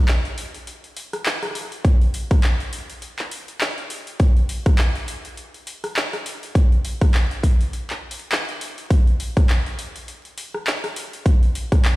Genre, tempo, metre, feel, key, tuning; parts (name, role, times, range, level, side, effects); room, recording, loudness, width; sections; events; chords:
glitch hop; 102 BPM; 4/4; swing 57% on 16ths
dubstep drum kit; drums; 0.1-12.0 s; handclaps, hi-hat, rim click; -27 LUFS; equal; overdrive
electronic kick drum; drums; 1.8-11.8 s; -16 LUFS; equal; overdrive
little or no reverb; played on a big sound system in a bare room, stone room reverb, vinyl crackle; -18 LUFS; side -19 dB against mid
0.0-12.0 A section